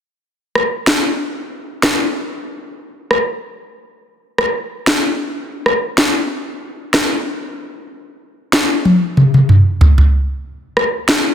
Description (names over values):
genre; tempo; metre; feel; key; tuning
dancehall; 94 BPM; 4/4; straight; none; none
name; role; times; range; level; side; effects
island pop drum kit; drums; 0.6-11.2 s; rim click, snare drum, toms; -13 LUFS; equal; none
room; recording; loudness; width
moderate lush hall reverb, RT60 2.6 s; dense, heavily limited modern master; -13 LUFS; side -9 dB against mid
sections
0.0-10.1 A section; 10.1-11.3 B section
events
drum fill 8.9-10.1; break 10.1-11.3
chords
none